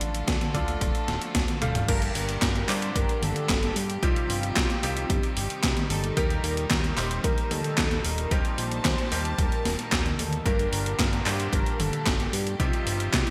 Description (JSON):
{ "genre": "italo disco", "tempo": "112 BPM", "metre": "4/4", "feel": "straight", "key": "G minor", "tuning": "A4 = 440 Hz", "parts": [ { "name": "rich chamber string section", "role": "sustained chords", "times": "0.0-13.3 s", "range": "Bb2 to A5", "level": "-38 LUFS", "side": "equal", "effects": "none" }, { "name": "bright baby grand piano", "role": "stabs", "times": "0.0-13.3 s", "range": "G2 to F5", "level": "-37 LUFS", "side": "equal", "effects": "digital delay" }, { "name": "fat analog bass", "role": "bass", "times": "0.0-13.2 s", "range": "D1 to G2", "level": "-33 LUFS", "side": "equal", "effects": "none" }, { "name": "gated 80s digital drum machine", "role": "drums", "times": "0.0-13.3 s", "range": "crash cymbal, handclaps, hi-hat, snare drum, toms", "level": "-31 LUFS", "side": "equal", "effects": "gated reverb, gated reverb snare, overdrive" }, { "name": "electronic kick drum", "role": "drums", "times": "0.3-13.2 s", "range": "none", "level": "-31 LUFS", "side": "equal", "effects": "none" }, { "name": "unison lead", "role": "melody", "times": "1.6-13.3 s", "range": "F4 to C5", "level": "-35 LUFS", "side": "equal", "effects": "subtle chorus, cassette tape, digital delay" } ], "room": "moderate lush hall reverb, RT60 1.9 s, digital ambience", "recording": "bright 1980s-style digital production", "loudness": "-26 LUFS", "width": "mono", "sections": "0.0-1.9 A section; 1.9-13.3 B section", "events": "drum fill 1.5-1.9", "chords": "0.0 Dm; 1.9 Gm; 4.0 Cm; 6.2 Eb; 10.5 Gm; 12.6 Cm" }